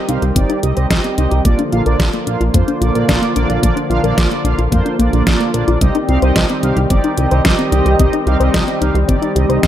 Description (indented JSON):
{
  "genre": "synthwave",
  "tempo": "110 BPM",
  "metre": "4/4",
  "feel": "straight",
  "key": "C minor",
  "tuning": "A4 = 440 Hz",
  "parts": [
    { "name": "warm analog pad", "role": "sustained chords", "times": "0.0-9.7 s", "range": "D3 to G4", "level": "-20 LUFS", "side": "equal", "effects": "chorus, sidechain pumping" },
    { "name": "soft round pluck", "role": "arpeggios", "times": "0.0-9.7 s", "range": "Bb3 to Eb5", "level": "-21 LUFS", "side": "left 3 dB", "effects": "chorus, ping-pong delay" },
    { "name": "mellow synth brass", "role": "stabs", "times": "0.0-9.7 s", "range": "Bb3 to F5", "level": "-20 LUFS", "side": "right 3 dB", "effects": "chorus, cassette tape, ping-pong delay" },
    { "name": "chorused synth bass", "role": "bass", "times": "0.1-9.7 s", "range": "G1 to F2", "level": "-16 LUFS", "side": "equal", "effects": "none" },
    { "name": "pop drum kit", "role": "drums", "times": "0.1-9.7 s", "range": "hi-hat, snare drum", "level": "-20 LUFS", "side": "equal", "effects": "overdrive" },
    { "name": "electronic kick drum", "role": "drums", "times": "0.4-9.7 s", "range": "none", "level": "-17 LUFS", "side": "equal", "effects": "overdrive" }
  ],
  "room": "light reverb",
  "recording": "none",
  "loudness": "-12 LUFS",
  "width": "side -11 dB against mid",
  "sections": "0.0-9.7 A section",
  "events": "filter sweep on synth arpeggio sound 0.0-9.7",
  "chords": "0.0 Cm; 1.4 Bb; 5.8 Cm"
}